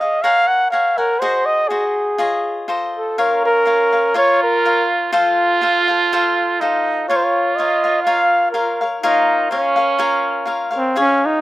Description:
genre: mexican folk, mariachi.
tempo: 123 BPM.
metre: 2/4.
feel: straight.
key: Bb harmonic minor from 3.2 s.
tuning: A4 = 440 Hz.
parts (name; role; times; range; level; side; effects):
mellow trumpet; melody; 0.0-4.9, 7.1-11.4 s; C4 to Gb5; -16 LUFS; equal; slapback echo.
cavaquinho; accompaniment; 0.0-11.4 s; F4 to Ab5; -19 LUFS; left 2 dB; slapback echo.
clear trumpet; second line; 3.2-10.7 s; Db4 to F4; -19 LUFS; right 4 dB; slapback echo.
room: little or no reverb.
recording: recorded outdoors, with no room sound.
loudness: -14 LUFS.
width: side -16 dB against mid.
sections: 0.0-3.2 A section; 3.2-11.0 B section.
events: none.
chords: 0.3 Gbadd9; 1.2 Ab7; 2.2 Dbadd9; 2.7 F7; 3.2 Bbm; 5.1 F; 7.1 Bbm.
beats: | 0.26 0.74 | 1.23 1.72 | 2.21 2.70 | 3.19 3.68 | 4.17 4.65 | 5.14 5.62 | 6.11 6.60 | 7.09 7.57 | 8.06 8.54 | 9.03 9.51 | 9.99 10.48 | 10.97.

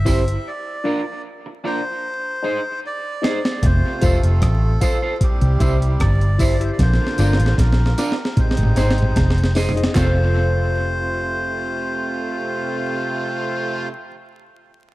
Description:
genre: roots reggae.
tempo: 76 BPM.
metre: 4/4.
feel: straight.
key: F major.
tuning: A4 = 440 Hz.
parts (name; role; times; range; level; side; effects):
melodica; melody; 0.0-13.9 s; G4 to E5; -27 LUFS; left 1 dB; tape echo.
overdriven reed electric piano; stabs; 0.0-14.1 s; C4 to F5; -28 LUFS; left 4 dB; phaser.
vintage muted fingered electric bass; bass; 0.0-14.1 s; E1 to C2; -17 LUFS; equal; none.
electric guitar at the edge of break-up; accompaniment; 0.1-14.2 s; D4 to C5; -27 LUFS; right 2 dB; tape echo.
breakbeat sampler-style drum kit; drums; 0.1-10.2 s; handclaps, hi-hat, kick drum, rim click, snare drum, toms; -20 LUFS; equal; dub echo.
tambourine and woodblock; percussion; 0.1-10.3 s; none; -36 LUFS; right 5 dB; none.
warm horn section; second line; 3.6-13.9 s; C3 to F4; -28 LUFS; right 3 dB; tape echo.
room: light reverb.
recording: echo-heavy mix, vinyl crackle.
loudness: -17 LUFS.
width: side -18 dB against mid.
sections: 0.0-3.6 A section; 3.6-10.0 B section; 10.0-13.1 C section.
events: break 0.5-3.6; drum fill 2.0-3.6, 6.8-10.0.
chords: 0.5 Bb; 2.0 Ab; 3.6 F; 5.2 C; 6.8 Bb; 8.4 Ab; 10.0 F.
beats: | 0.46 1.25 2.04 2.83 | 3.63 4.42 5.21 6.00 | 6.79 7.58 8.37 9.16 | 9.96 10.75 11.54 12.33.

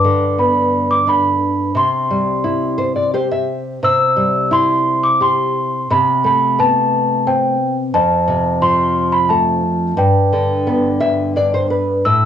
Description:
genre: children's music, lullaby.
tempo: 88 BPM.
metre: 3/4.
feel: straight.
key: C major.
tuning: A4 = 440 Hz.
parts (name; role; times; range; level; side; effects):
large celesta; melody; 0.0-12.3 s; G5 to E6; -16 LUFS; equal; cassette tape.
nylon-string guitar; accompaniment; 0.0-12.3 s; F2 to E5; -16 LUFS; equal; cassette tape.
room: light reverb.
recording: home recording on cassette, studio ambience.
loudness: -13 LUFS.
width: side -9 dB against mid.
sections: 0.0-3.8 A section; 3.8-12.3 A section.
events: nylon-string guitar fill 2.4-3.8, 10.7-12.1.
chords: 0.0 G; 1.7 C; 5.9 Amadd9/C; 7.9 F; 10.0 G.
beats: 0.39 1.06 | 1.75 2.43 3.12 | 3.82 4.51 5.20 | 5.89 6.58 7.26 | 7.94 8.61 9.29 | 9.98 10.66 11.36 | 12.05.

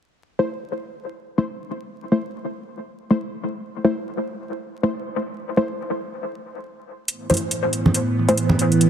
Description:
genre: deep dubstep.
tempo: 139 BPM.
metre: 4/4.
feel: swing 58% on 16ths, half-time.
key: A minor.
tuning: A4 = 441 Hz.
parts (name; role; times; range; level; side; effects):
filtered dub chord stab; stabs; 0.4-8.4 s; A3 to C5; -23 LUFS; left 1 dB; chorus, dub echo.
overtone-sweeping drone; sustained chords; 7.6-8.9 s; A2 to B3; -19 LUFS; right 2 dB; chorus, built-in reverb, phaser.
electronic hi-hat; drums; 7.1-8.9 s; none; -24 LUFS; right 1 dB; none.
congas; percussion; 7.3-8.6 s; none; -21 LUFS; right 1 dB; dub echo.
room: moderate lush hall reverb, RT60 2.4 s.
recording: dense, heavily limited modern master, vinyl crackle.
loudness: -21 LUFS.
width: side -9 dB against mid.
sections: 0.2-8.9 A section.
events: filter sweep on synth stab 0.2-8.9.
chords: 0.2 Am.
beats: | 0.18 0.61 1.04 1.47 | 1.90 2.33 2.77 3.20 | 3.63 4.06 4.49 4.92 | 5.36 5.79 6.22 6.65 | 7.08 7.51 7.95 8.38 | 8.81.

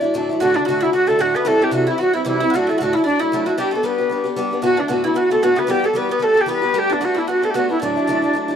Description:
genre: celtic folk, Celtic reel.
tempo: 227 BPM.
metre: 4/4.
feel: swing 57% on 8ths.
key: D mixolydian.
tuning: A4 = 435 Hz.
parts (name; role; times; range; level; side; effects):
breathy mellow wooden flute; melody; 0.0-8.6 s; D4 to D5; -18 LUFS; right 1 dB; tape echo.
dark fiddle; second line; 0.0-8.6 s; D4 to D5; -27 LUFS; left 4 dB; none.
mandolin; second line; 0.0-8.6 s; G3 to F#4; -29 LUFS; right 7 dB; none.
picked acoustic archtop guitar; accompaniment; 0.0-8.6 s; D2 to G4; -21 LUFS; left 1 dB; none.
room: light reverb.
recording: dry, close 1970s-style studio recording.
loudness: -16 LUFS.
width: side -8 dB against mid.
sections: 0.4-8.6 A section.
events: none.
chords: 0.4 D; 1.5 C; 2.5 Dadd9; 3.6 G; 4.6 D6; 5.7 Em; 6.7 Gadd9; 7.8 Dadd9.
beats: 0.14 | 0.40 0.67 0.93 1.20 | 1.46 1.73 1.99 2.25 | 2.52 2.78 3.05 3.31 | 3.58 3.84 4.11 4.37 | 4.63 4.90 5.16 5.43 | 5.69 5.96 6.22 6.48 | 6.75 7.01 7.27 7.54 | 7.80 8.06 8.33.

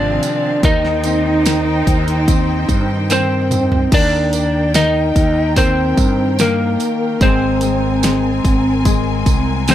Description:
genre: pop ballad.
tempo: 73 BPM.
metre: 4/4.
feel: straight.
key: Eb major.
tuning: A4 = 439 Hz.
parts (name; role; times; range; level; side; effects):
lightly driven lead guitar; melody; 0.0-9.7 s; Bb3 to Eb5; -17 LUFS; equal; none.
warm symphonic cello section; second line; 0.0-3.9 s; C3 to Eb4; -23 LUFS; right 3 dB; none.
warm grand piano; accompaniment; 0.0-9.7 s; Eb3 to C4; -23 LUFS; left 14 dB; none.
rich studio string section; sustained chords; 0.0-9.7 s; Eb3 to Ab5; -24 LUFS; equal; none.
mellow fretless electric bass; bass; 0.0-9.7 s; Ab1 to G2; -20 LUFS; equal; none.
pop drum kit; drums; 0.2-9.7 s; crash cymbal, hi-hat, kick drum, snare drum, toms; -16 LUFS; equal; none.
tambourine; percussion; 0.2-9.7 s; none; -29 LUFS; right 17 dB; none.
room: light reverb.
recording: none.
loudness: -13 LUFS.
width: side -12 dB against mid.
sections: 0.0-3.9 A section; 3.9-9.7 A section.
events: drum fill 3.1-3.9.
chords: 0.0 Fm7; 0.6 Cm/Eb; 3.9 Eb; 7.2 Abadd9.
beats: | 0.63 1.46 2.28 3.10 | 3.92 4.74 5.57 6.39 | 7.21 8.03 8.85 9.68.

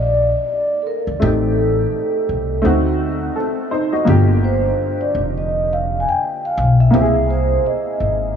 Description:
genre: hip hop.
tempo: 84 BPM.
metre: 4/4.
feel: swing 60% on 16ths.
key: C minor.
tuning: A4 = 440 Hz.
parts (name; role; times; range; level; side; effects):
vibraphone with soft mallets; melody; 0.0-8.4 s; A4 to Ab5; -20 LUFS; right 1 dB; analog delay.
dark upright piano; accompaniment; 0.0-8.4 s; D3 to Eb5; -20 LUFS; equal; analog chorus.
upright bass; bass; 0.0-8.4 s; F1 to D2; -18 LUFS; equal; none.
room: moderate huge ambient reverb, RT60 7.0 s.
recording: dreamy mix soaked in reverb, cassette tape, studio ambience.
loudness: -15 LUFS.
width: side -8 dB against mid.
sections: 0.0-8.4 A section.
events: none.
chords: 0.0 Cm9; 1.2 Am7b5; 2.6 D7b9; 4.1 Gm7; 6.9 C7alt.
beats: 0.50 | 1.21 1.93 2.64 3.36 | 4.07 4.79 5.50 6.21 | 6.93 7.64 8.36.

